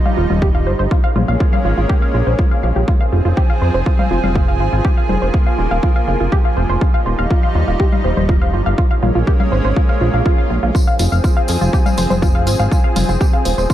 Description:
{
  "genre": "melodic techno",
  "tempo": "122 BPM",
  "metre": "4/4",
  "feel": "straight",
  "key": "F minor",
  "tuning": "A4 = 440 Hz",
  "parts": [
    { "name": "lush unison pad", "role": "sustained chords", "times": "0.0-13.7 s", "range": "F3 to Ab4", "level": "-22 LUFS", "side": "right 1 dB", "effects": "chorus, sidechain pumping" },
    { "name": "tight sequenced synth", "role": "arpeggios", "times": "0.1-13.7 s", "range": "F4 to F5", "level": "-22 LUFS", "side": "right 1 dB", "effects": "chorus, cassette tape, sidechain pumping, dub echo" },
    { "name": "electronic congas and hi-hat", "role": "drums", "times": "0.1-13.6 s", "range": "none", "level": "-23 LUFS", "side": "left 4 dB", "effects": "overdrive, sidechain pumping on perc, sidechain pumping on hats" },
    { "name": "fat analog bass", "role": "bass", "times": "0.2-13.7 s", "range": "Eb1 to F2", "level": "-16 LUFS", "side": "equal", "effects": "sidechain pumping" },
    { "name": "electronic kick drum", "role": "drums", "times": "0.4-13.7 s", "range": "none", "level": "-15 LUFS", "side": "equal", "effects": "overdrive" },
    { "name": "swell", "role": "sound effects", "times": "9.9-10.7 s", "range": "none", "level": "-27 LUFS", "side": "right 3 dB", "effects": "none" },
    { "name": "tambourine", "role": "percussion", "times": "10.8-13.7 s", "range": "none", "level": "-30 LUFS", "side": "left 2 dB", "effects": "none" }
  ],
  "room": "light reverb",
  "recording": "lossy compression artefacts",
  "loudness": "-13 LUFS",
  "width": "side -12 dB against mid",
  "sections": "0.0-13.7 A section",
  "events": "swell 9.9-10.7",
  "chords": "0.0 Ebadd9; 0.9 Bbm7; 2.9 Fm; 6.8 Ebadd9; 8.8 Bbm7; 10.7 Fm"
}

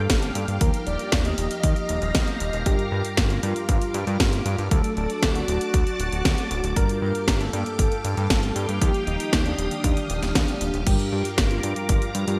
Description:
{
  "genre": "italo disco",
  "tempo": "117 BPM",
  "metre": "4/4",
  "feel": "straight",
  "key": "G minor",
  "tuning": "A4 = 440 Hz",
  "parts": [
    { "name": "unison lead", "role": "melody", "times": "0.0-12.4 s", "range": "D4 to Eb5", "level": "-33 LUFS", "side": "equal", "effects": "delay" },
    { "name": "string machine, full ensemble", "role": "sustained chords", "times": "0.0-12.4 s", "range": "F#4 to Eb6", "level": "-34 LUFS", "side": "equal", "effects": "ensemble chorus" },
    { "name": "analog synth brass", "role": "stabs", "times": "0.0-12.4 s", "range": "G2 to Bb4", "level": "-34 LUFS", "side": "equal", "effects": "chorus" },
    { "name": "fat analog bass", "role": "bass", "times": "0.0-12.4 s", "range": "D1 to G2", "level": "-29 LUFS", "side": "equal", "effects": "none" },
    { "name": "electronic kick drum", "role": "drums", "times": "0.1-12.0 s", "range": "none", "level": "-25 LUFS", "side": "equal", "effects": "none" },
    { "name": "house drum kit", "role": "drums", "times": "0.1-12.4 s", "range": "crash cymbal, hi-hat, snare drum", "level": "-30 LUFS", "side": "equal", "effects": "gated reverb" }
  ],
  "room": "moderate lush hall reverb, RT60 2.1 s",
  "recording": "bright 1980s-style digital production",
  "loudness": "-23 LUFS",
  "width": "mono",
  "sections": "0.0-12.4 A section",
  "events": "none",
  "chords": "0.0 Gm7; 0.6 Ebadd9; 2.7 Gm7; 4.7 D; 6.8 Gm7; 8.8 Ebadd9; 10.9 Gm7"
}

